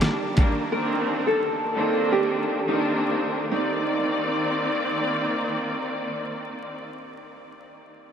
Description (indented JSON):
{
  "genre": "hip hop, boom-bap hip-hop",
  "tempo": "86 BPM",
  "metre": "4/4",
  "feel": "swing 60% on 16ths",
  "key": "C dorian",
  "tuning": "A4 = 440 Hz",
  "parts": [
    { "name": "nylon-string guitar", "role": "melody", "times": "0.0-5.6 s", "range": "Eb4 to Bb4", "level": "-27 LUFS", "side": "right 1 dB", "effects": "analog chorus, high-pass filter, low-pass filter, analog delay" },
    { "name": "bright studio string section", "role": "accompaniment", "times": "0.0-6.9 s", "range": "Eb3 to D5", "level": "-25 LUFS", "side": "equal", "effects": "cassette tape, high-pass filter, low-pass filter" },
    { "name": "rich studio string section", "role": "sustained chords", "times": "0.0-0.7 s", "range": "none", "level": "barely audible", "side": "none", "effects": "none" },
    { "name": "dusty soul sampler-style drum kit", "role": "drums", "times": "0.0-0.6 s", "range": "hi-hat, kick drum, rim click, snare drum", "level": "-26 LUFS", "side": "equal", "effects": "none" }
  ],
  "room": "wet huge ambient reverb, RT60 7.8 s",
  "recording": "dreamy mix soaked in reverb, vinyl crackle",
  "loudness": "-22 LUFS",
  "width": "side -8 dB against mid",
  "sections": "0.0-3.5 A section; 3.5-6.3 B section",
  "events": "none",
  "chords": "0.0 Ebmaj7; 0.7 Cm9/Eb",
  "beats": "0.02 | 0.72 1.42 2.11 2.81 | 3.51 4.21 4.91 5.60"
}